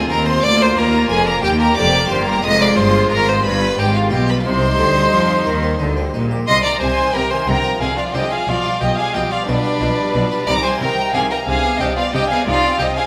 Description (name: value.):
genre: classical, baroque-style concerto movement with solo episodes.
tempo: 60 BPM (dotted quarters).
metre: 6/8.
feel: straight.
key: C minor.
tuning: A4 = 442 Hz.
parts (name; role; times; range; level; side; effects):
rich chamber violin section; melody; 0.0-13.1 s; D5 to Eb6; -25 LUFS; equal; none.
rich violin; melody; 0.0-13.0 s; D4 to Eb5; -21 LUFS; equal; none.
rich chamber violin section; second line; 0.0-13.1 s; Eb4 to C6; -26 LUFS; equal; none.
harpsichord; accompaniment; 0.0-13.1 s; D2 to F5; -30 LUFS; equal; none.
rich symphonic viola section; accompaniment; 0.0-13.1 s; D3 to Eb4; -27 LUFS; equal; none.
clear chamber cello section; bass; 0.0-12.9 s; D2 to F3; -25 LUFS; equal; none.
clear chamber double bass section; bass; 0.0-12.9 s; F1 to F2; -25 LUFS; equal; none.
room: wet scoring stage reverb, RT60 1.7 s.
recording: none.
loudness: -16 LUFS.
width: mono.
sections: 0.0-6.5 A section; 6.5-13.1 A section.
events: none.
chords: 0.4 Bb/D; 1.4 Eb; 2.4 Fm; 3.4 G7; 4.4 Cm; 7.5 Dm7b5/C; 8.5 G7/B; 10.5 Cm; 11.5 G7/C; 12.5 Cm.